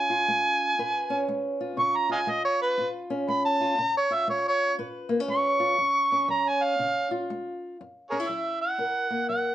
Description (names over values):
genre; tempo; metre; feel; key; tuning
acoustic country blues, solo or duo; 120 BPM; 4/4; swing 63% on 8ths; F# major; A4 = 444 Hz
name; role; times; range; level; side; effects
overdriven harmonica; melody; 0.0-9.5 s; G#4 to C#6; -24 LUFS; right 1 dB; slapback echo
fingerpicked old ladder-braced acoustic guitar; accompaniment; 0.0-9.5 s; F#2 to B4; -30 LUFS; equal; none
room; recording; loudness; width
light reverb; nothing above 10.3 kHz; -24 LUFS; side -13 dB against mid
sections
0.0-7.8 A section; 7.8-9.5 B section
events
harmonica solo 0.0-7.8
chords
0.0 C#7; 5.8 F#5; 6.8 C#; 7.8 F#7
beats
0.28 0.79 1.28 | 1.78 2.29 2.79 3.28 | 3.78 4.28 4.78 5.28 | 5.78 6.28 6.78 7.28 | 7.78 8.28 8.78 9.28